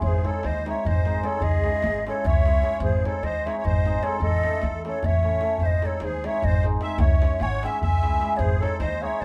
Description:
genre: balkan folk, Balkan wedding band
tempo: 302 BPM (eighths)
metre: 7/8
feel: straight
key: unclear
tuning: A4 = 440 Hz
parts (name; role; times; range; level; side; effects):
- breathy mellow low ney; melody; 0.0-9.2 s; B#4 to G#5; -29 LUFS; equal; none
- musette accordion; second line; 0.0-9.2 s; G#4 to E5; -36 LUFS; equal; none
- cimbalom; accompaniment; 0.0-9.2 s; G#3 to A4; -33 LUFS; equal; none
- upright bass; bass; 0.0-9.2 s; G#1 to E2; -28 LUFS; equal; none
- darbuka; percussion; 0.0-9.2 s; none; -28 LUFS; equal; none
room: wet studio reverb, RT60 0.6 s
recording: band playing live in one room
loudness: -24 LUFS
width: mono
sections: 0.0-9.2 A section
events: none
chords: 0.0 G#; 1.4 C#m; 2.8 G#; 4.2 A; 5.6 G#; 7.0 C#m; 8.4 G#

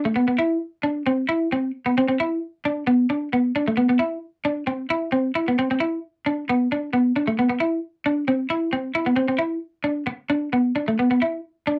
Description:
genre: highlife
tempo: 133 BPM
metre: 4/4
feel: swing 53% on 16ths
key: unclear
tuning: A4 = 440 Hz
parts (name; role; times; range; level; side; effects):
- electric guitar at the edge of break-up; solo; 0.0-11.8 s; A3 to E4; -22 LUFS; equal; analog chorus
room: light reverb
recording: dry, close 1970s-style studio recording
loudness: -23 LUFS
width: mono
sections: 0.0-6.5 A section; 6.5-11.8 B section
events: none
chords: none

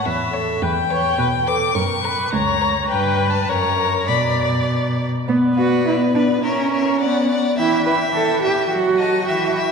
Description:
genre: quick classical-period movement for string quartet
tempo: 105 BPM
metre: 2/4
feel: rubato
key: B minor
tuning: A4 = 440 Hz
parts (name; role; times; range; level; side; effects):
- warm violin; melody; 0.0-9.7 s; D5 to D6; -23 LUFS; left 6 dB; none
- rich viola; accompaniment; 0.0-9.7 s; E3 to D5; -22 LUFS; equal; none
- rich cello; bass; 0.1-9.5 s; C#2 to B4; -21 LUFS; right 3 dB; none
- rich violin; second line; 0.3-9.7 s; A#4 to E5; -25 LUFS; left 3 dB; none
room: wet church reverb, RT60 3.8 s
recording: recorded in a church or concert hall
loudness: -16 LUFS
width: side -5 dB against mid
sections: 0.0-5.3 A section; 5.3-9.7 B section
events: none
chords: 0.0 A; 0.6 Em; 1.8 F#; 2.9 G; 3.5 F#; 4.1 Bm; 6.4 A#dim/C#; 7.0 Bm; 7.6 Em; 8.7 D#dim/F#

